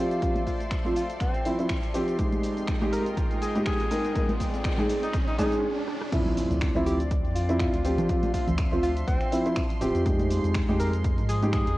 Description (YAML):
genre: deep house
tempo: 122 BPM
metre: 4/4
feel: swing 56% on 16ths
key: D phrygian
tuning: A4 = 440 Hz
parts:
  - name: warm alto saxophone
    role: melody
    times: 0.0-11.8 s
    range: C4 to Bb4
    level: -34 LUFS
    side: left 1 dB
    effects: low-pass filter, cassette tape, analog delay
  - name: warbly tape-like pad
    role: sustained chords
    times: 0.0-11.8 s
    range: F3 to A5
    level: -37 LUFS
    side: left 1 dB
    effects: chorus, built-in reverb, sidechain pumping
  - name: felt-muted upright piano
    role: stabs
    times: 0.0-11.6 s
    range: F3 to Bb4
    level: -28 LUFS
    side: equal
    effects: low-pass filter
  - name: round analog bass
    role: bass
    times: 0.0-11.8 s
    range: D1 to Ab2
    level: -31 LUFS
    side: equal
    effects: sidechain pumping, high-pass filter
  - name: riser, swell and impact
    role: sound effects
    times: 2.4-8.1 s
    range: none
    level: -37 LUFS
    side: right 1 dB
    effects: none
  - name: analog string pad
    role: texture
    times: 0.0-11.8 s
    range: C6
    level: -44 LUFS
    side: right 3 dB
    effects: ensemble chorus, sidechain pumping
  - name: clear studio string section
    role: texture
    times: 0.0-5.6 s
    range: Eb4 to C6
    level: -46 LUFS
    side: equal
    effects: none
  - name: punchy analog drum machine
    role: drums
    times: 0.1-11.8 s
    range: crash cymbal, finger snaps, hi-hat, rim click, shaker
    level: -39 LUFS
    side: equal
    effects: vintage 12-bit sampler grit, studio reverb
  - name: electronic kick drum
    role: drums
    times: 0.2-11.6 s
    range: none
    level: -28 LUFS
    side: equal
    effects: vintage 12-bit sampler grit, studio reverb
  - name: congas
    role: percussion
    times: 0.4-11.2 s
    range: none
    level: -35 LUFS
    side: right 1 dB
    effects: none
room: light reverb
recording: home recording on cassette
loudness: -24 LUFS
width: side -17 dB against mid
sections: 0.0-6.1 A section; 6.1-11.8 B section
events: build-up 0.0-6.1; filter sweep on felt piano 0.0-6.1; filter sweep on alto saxophone 0.0-6.1; riser 2.4-6.1; swell 5.1-6.1; stop 5.6-6.1; drum fill 5.9; drop 6.1-11.8; impact 6.1-8.1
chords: 0.0 Dm9; 2.2 Fm9; 5.9 N.C.; 6.1 Dm9; 10.1 Fm9